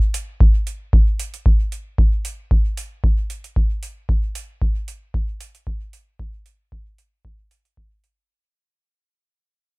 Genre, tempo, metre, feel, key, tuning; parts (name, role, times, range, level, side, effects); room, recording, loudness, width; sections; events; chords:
techno; 114 BPM; 4/4; swing 54% on 16ths
electronic hi-hat; drums; 0.1-8.2 s; -33 LUFS; right 6 dB
electronic kick drum; drums; 0.4-7.9 s; -17 LUFS; equal
digital ambience; echo-heavy mix; -18 LUFS; side -32 dB against mid
0.0-8.3 A section
fade-out 0.0-8.3